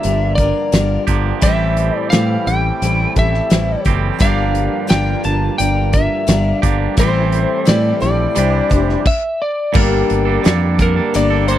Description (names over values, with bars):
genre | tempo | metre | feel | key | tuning
folk rock and heartland rock | 86 BPM | 4/4 | straight | unclear | A4 = 441 Hz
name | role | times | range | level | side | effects
lightly driven lead guitar | melody | 0.0-11.6 s | Bb4 to A5 | -19 LUFS | equal | none
picked twelve-string acoustic guitar | accompaniment | 0.0-11.6 s | A2 to C5 | -21 LUFS | left 9 dB | none
tonewheel organ | sustained chords | 0.0-11.6 s | E3 to A5 | -29 LUFS | equal | none
twangy electric guitar | riff | 0.0-11.6 s | G2 to A4 | -22 LUFS | right 11 dB | none
fingered electric bass | bass | 0.0-11.6 s | F1 to A2 | -18 LUFS | equal | none
loose indie drum kit | drums | 0.0-11.6 s | crash cymbal, hi-hat, kick drum, snare drum | -16 LUFS | equal | none
room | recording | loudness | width
little or no reverb | dry, close 1970s-style studio recording | -13 LUFS | side -12 dB against mid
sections
0.0-9.8 A section; 9.8-11.6 B section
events
stop 9.1-9.8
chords
0.0 Gm7; 1.4 Am7; 4.2 Gm7; 7.0 Am7; 8.4 Cadd9; 9.8 Gmadd9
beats
0.04 0.73 | 1.43 2.12 2.82 3.51 | 4.21 4.90 5.59 6.29 | 6.98 7.67 8.37 9.06 | 9.75 10.44 11.14